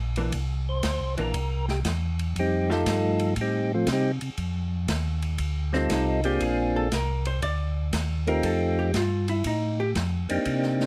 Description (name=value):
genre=soul jazz organ trio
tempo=118 BPM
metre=4/4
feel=swing 67% on 8ths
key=F mixolydian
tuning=A4 = 444 Hz
part: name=mellow tonewheel organ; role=bass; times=0.0-10.9 s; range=Bb1 to C3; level=-30 LUFS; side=equal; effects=chorus vibrato, slow rotary speaker
part: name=vintage hollow-body jazz guitar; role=accompaniment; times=0.2-9.9 s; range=E3 to D5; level=-32 LUFS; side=equal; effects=none
part: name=open jazz drum kit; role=drums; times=0.2-10.9 s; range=hi-hat, kick drum, ride cymbal, snare drum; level=-36 LUFS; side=equal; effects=none
part: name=percussive tonewheel organ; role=melody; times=0.7-10.9 s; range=F3 to C5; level=-28 LUFS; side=equal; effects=slow rotary speaker
room=little or no reverb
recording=close, detailed microphones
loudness=-26 LUFS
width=mono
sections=0.0-4.4 A section; 4.4-10.9 A section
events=tonewheel organ solo 0.0-4.4; hollow-body jazz guitar solo 4.4-10.9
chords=0.3 C9; 2.4 F9; 6.4 Bb9; 8.4 F9